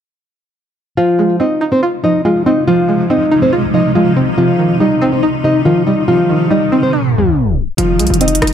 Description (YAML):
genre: hip hop, trap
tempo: 141 BPM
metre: 4/4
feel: half-time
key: F minor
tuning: A4 = 439 Hz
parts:
  - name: nylon-string guitar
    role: melody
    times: 1.0-8.5 s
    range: F3 to Eb5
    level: -14 LUFS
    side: left 1 dB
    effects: ping-pong delay
  - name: string-like resonator pluck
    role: accompaniment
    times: 1.0-8.5 s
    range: C3 to F4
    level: -16 LUFS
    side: right 3 dB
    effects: chorus
  - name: granular cloud pad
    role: sustained chords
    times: 1.9-8.5 s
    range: C3 to F5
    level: -17 LUFS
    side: left 1 dB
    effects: built-in reverb
  - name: hard-hitting 808-style bass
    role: bass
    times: 7.8-8.5 s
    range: F1 to C2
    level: -16 LUFS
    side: equal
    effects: none
  - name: trap drum kit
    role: drums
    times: 7.8-8.5 s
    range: hi-hat, rim click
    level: -18 LUFS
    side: right 1 dB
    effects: none
room: light reverb, digital ambience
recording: tape stop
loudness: -11 LUFS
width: side -8 dB against mid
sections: 1.0-7.8 A section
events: tape stop 6.9-7.8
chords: 1.0 Fm7; 4.4 Cm; 7.8 Fm7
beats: | 0.97 1.40 1.82 2.25 | 2.68 3.10 3.53 3.95 | 4.38 4.80 5.23 5.65 | 6.08 6.50 6.93 7.36 | 7.78 8.21